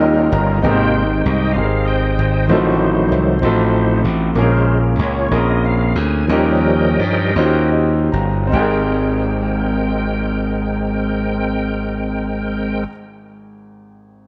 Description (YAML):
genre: gospel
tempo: 49-64 BPM (dotted quarters)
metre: 6/8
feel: straight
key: Ab major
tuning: A4 = 440 Hz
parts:
  - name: clear grand piano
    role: accompaniment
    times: 0.0-14.3 s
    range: Ab1 to Bb5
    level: -23 LUFS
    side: equal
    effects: none
  - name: bright tonewheel organ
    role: sustained chords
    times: 0.0-12.8 s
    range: C3 to Ab5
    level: -22 LUFS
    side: equal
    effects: slow rotary speaker, chorus vibrato
  - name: gritty slap bass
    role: bass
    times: 0.0-12.8 s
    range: G1 to G2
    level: -20 LUFS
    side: equal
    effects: overdrive
room: light reverb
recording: none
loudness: -17 LUFS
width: mono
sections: 0.6-8.5 A section; 8.5-13.5 B section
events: grand piano fill 0.0-0.6, 7.4-8.5; tonewheel organ solo 0.6-8.5; slowing down 4.4-8.5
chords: 0.0 Eb9; 0.6 Abmaj9; 2.5 F7b9/A; 4.4 Bbm7; 6.3 Eb9; 8.5 Abmaj9